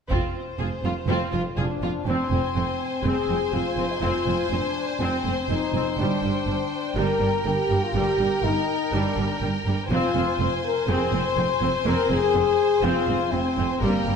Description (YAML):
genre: cinematic, epic orchestral film score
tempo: 122 BPM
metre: 4/4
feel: straight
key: F dorian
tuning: A4 = 438 Hz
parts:
  - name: warm symphonic violin section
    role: melody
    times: 0.1-14.2 s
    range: C5 to Ab5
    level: -36 LUFS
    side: left 1 dB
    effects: none
  - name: rich studio violin section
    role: second line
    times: 0.1-14.2 s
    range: C4 to C5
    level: -30 LUFS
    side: left 3 dB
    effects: none
  - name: rich symphonic viola section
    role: accompaniment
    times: 0.1-14.1 s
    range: G3 to F4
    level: -31 LUFS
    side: right 1 dB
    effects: none
  - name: rich symphonic cello section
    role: bass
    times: 0.1-14.1 s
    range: F2 to G2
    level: -29 LUFS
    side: right 3 dB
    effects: none
  - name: rich symphonic double bass section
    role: bass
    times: 0.1-14.1 s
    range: F1 to G1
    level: -29 LUFS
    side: right 4 dB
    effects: none
  - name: taiko ensemble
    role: drums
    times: 0.1-1.1 s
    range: none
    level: -29 LUFS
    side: equal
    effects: none
  - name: warm French horn section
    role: sustained chords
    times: 1.6-14.2 s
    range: Bb3 to C5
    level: -25 LUFS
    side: left 4 dB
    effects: none
room: wet scoring stage reverb, RT60 1.6 s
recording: none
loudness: -21 LUFS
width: side -6 dB against mid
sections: 0.1-2.1 A section; 2.1-14.2 B section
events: none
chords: 0.1 F5; 2.1 Fm; 6.0 Gm; 9.9 Fm